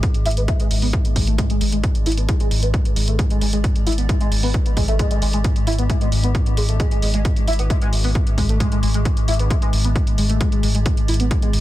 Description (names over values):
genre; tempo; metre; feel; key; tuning
driving peak-time techno; 133 BPM; 4/4; straight; unclear; A4 = 440 Hz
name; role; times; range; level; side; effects
saturated sub bass; bass; 0.0-11.6 s; G#1; -21 LUFS; equal; tube saturation, sidechain pumping, low-pass filter
metallic inharmonic drone; drone; 0.0-11.6 s; G#2 to G#3; -25 LUFS; left 1 dB; chorus, built-in reverb, phaser, sidechain pumping
electronic hi-hat; drums; 0.0-11.6 s; none; -29 LUFS; right 2 dB; sidechain pumping on hats, small room ambience, sidechain pumping on cymbals
electronic kick drum; drums; 0.0-11.4 s; none; -19 LUFS; equal; overdrive, small room ambience
overdriven synth lead; riff; 0.3-11.5 s; G#3 to E4; -25 LUFS; equal; ensemble chorus, cassette tape, sidechain pumping, ping-pong delay
room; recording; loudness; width
little or no reverb; dense, heavily limited modern master; -16 LUFS; side -15 dB against mid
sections
0.0-11.6 A section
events
none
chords
none